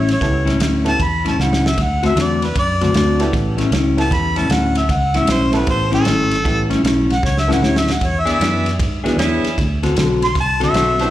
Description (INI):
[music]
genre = electric blues shuffle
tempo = 154 BPM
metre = 4/4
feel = swing 64% on 8ths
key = A mixolydian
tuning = A4 = 435 Hz
[part]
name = mellow harmonica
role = melody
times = 0.0-11.1 s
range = A4 to C6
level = -20 LUFS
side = equal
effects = slapback echo
[part]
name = mellow electric guitar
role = riff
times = 0.0-11.1 s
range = A2 to A4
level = -19 LUFS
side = left 2 dB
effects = phaser, slapback echo
[part]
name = vintage muted fingered electric bass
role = bass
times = 0.0-11.1 s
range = G#1 to G#2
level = -20 LUFS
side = right 1 dB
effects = none
[part]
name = warm soul drum kit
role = drums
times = 0.1-11.1 s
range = kick drum, ride cymbal, snare drum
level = -22 LUFS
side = right 1 dB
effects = none
[part]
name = clear upright piano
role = accompaniment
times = 0.2-11.1 s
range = B3 to A4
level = -25 LUFS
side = right 3 dB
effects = slapback echo
[part]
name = clear saxophone section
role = stabs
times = 8.2-11.1 s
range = D4 to D5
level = -25 LUFS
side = right 2 dB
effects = slapback echo
[sound]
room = light reverb, small room ambience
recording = live gig heard through the venue's PA, club reverb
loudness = -14 LUFS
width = side -13 dB against mid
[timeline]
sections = 0.0-11.1 A section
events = harmonica solo 0.0-11.1; drum fill 1.4-1.8, 7.2-8.0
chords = 0.0 A7; 1.8 D7; 3.3 A7; 8.0 E7; 9.6 D7